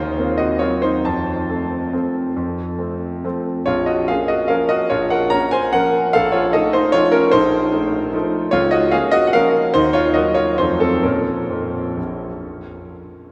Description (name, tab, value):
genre	classical, piano waltz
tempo	126-158 BPM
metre	3/4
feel	rubato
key	Bb minor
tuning	A4 = 440 Hz
part	warm concert grand piano	solo	0.0-13.3 s	Bb1 to Bb5	-18 LUFS	equal	none
room	wet cathedral reverb, RT60 4.8 s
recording	none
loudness	-18 LUFS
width	mono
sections	0.0-13.3 A section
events	none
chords	0.0 Cm7b5/Eb; 1.1 F; 3.7 Bbm; 6.1 F7/Bb; 8.5 Bbm/Db; 9.8 Ebm13; 10.6 F7b9; 11.0 Bbm